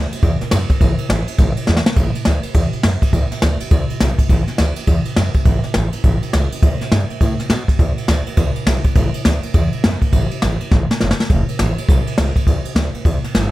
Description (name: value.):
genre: rockabilly.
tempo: 206 BPM.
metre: 4/4.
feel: swing 62% on 8ths.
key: A mixolydian.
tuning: A4 = 440 Hz.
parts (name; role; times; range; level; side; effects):
upright bass; bass; 0.0-13.5 s; E1 to B2; -18 LUFS; equal; none.
jazz brush drum kit; drums; 0.1-13.4 s; kick drum, ride cymbal, snare drum; -16 LUFS; equal; none.
room: little or no reverb.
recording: none.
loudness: -14 LUFS.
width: side -17 dB against mid.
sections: 0.0-2.0 A section; 2.0-13.5 B section.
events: drum fill 1.7, 10.7-11.3.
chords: none.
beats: 0.22 0.51 | 0.80 1.09 1.38 1.67 | 1.96 2.25 2.54 2.84 | 3.13 3.42 3.71 4.00 | 4.29 4.58 4.87 5.17 | 5.46 5.75 6.04 6.33 | 6.62 6.92 7.21 7.50 | 7.79 8.08 8.38 8.67 | 8.96 9.25 9.54 9.84 | 10.13 10.42 10.71 11.01 | 11.30 11.59 11.88 12.17 | 12.47 12.76 13.05 13.34.